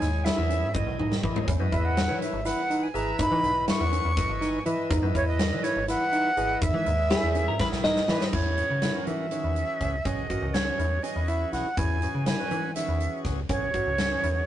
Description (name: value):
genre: progressive instrumental, band music in an uneven meter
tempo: 245 BPM (eighths)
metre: 7/8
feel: straight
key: E lydian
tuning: A4 = 440 Hz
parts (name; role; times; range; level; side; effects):
- breathy bright jazz flute; melody; 0.0-14.5 s; B4 to C#6; -28 LUFS; right 2 dB; none
- bright tonewheel organ; accompaniment; 0.0-14.4 s; E3 to G#5; -33 LUFS; equal; overdrive, slow rotary speaker
- bright tine electric piano; arpeggios; 0.0-14.3 s; D#3 to G#4; -33 LUFS; right 1 dB; none
- metallic FM bass; bass; 0.0-14.4 s; G#1 to E3; -29 LUFS; equal; none
- huge arena drum kit; drums; 0.0-14.3 s; crash cymbal, hi-hat, kick drum, snare drum, toms; -30 LUFS; left 1 dB; none
- egg shaker; percussion; 0.7-7.8 s; none; -50 LUFS; left 6 dB; none
- clean electric guitar; second line; 7.1-8.3 s; G#4 to D#5; -27 LUFS; left 1 dB; none
room: moderate booth ambience, RT60 0.2 s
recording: rough rehearsal-room recording, tube saturation, nothing above 10.5 kHz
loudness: -24 LUFS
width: side -12 dB against mid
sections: 0.0-8.3 A section; 8.3-14.5 B section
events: drum fill 0.7-1.5, 7.6-8.3; tonewheel organ fill 4.2-4.9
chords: 0.0 Emaj7; 1.5 C#m7; 6.6 Emaj7; 8.3 E69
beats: 0.01 0.25 0.50 0.74 0.99 1.23 | 1.48 1.72 1.97 2.21 2.46 2.70 2.95 | 3.19 3.44 3.68 3.92 4.17 4.42 4.66 | 4.90 5.15 5.39 5.64 5.88 6.13 6.37 | 6.62 6.86 7.11 7.35 7.60 7.84 8.09 | 8.34 8.58 8.83 9.07 9.32 9.56 9.81 | 10.05 10.30 10.54 10.79 11.04 11.28 11.53 | 11.77 12.02 12.27 12.51 12.76 13.00 13.25 | 13.49 13.74 13.99 14.23